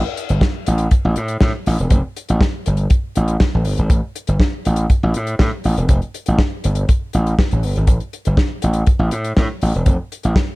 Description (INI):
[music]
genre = disco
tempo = 121 BPM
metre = 4/4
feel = straight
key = unclear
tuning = A4 = 442 Hz
[part]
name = warm soul drum kit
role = drums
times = 0.2-10.5 s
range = hi-hat, kick drum, snare drum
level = -16 LUFS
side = equal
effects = none
[part]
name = gritty slap bass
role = bass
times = 0.3-10.3 s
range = E1 to A2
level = -17 LUFS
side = equal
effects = overdrive
[sound]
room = little or no reverb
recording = dark, warm production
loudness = -15 LUFS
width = side -21 dB against mid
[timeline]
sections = 0.0-10.6 A section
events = none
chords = none